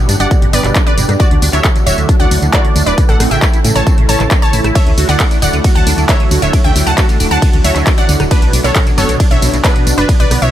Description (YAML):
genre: uplifting trance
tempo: 135 BPM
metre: 4/4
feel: straight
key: D major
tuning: A4 = 440 Hz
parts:
  - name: wide unison pluck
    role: melody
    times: 0.0-10.5 s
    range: D4 to A5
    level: -17 LUFS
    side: right 1 dB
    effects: sidechain pumping, digital delay
  - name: lush unison pad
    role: sustained chords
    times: 0.0-10.5 s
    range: B2 to A4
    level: -20 LUFS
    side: equal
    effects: chorus, sidechain pumping
  - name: liquid acid bass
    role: arpeggios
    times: 0.0-10.5 s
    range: B2 to F#4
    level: -20 LUFS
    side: right 3 dB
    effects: ensemble chorus, sidechain pumping, digital delay
  - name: solid FM bass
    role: bass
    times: 0.1-10.5 s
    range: D1 to A2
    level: -15 LUFS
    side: equal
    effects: sidechain pumping
  - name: punchy analog drum machine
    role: drums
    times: 0.1-10.5 s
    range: handclaps, hi-hat, ride cymbal, rim click, tambourine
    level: -18 LUFS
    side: equal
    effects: sidechain pumping on hats, sidechain pumping on perc, sidechain pumping on cymbals
  - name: electronic kick drum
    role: drums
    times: 0.3-10.2 s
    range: none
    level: -11 LUFS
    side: equal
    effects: none
room: little or no reverb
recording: none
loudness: -9 LUFS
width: side -12 dB against mid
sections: 0.0-10.5 A section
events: none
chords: 0.0 G; 1.2 Dadd9; 3.0 A; 4.8 Dadd9; 8.3 Bm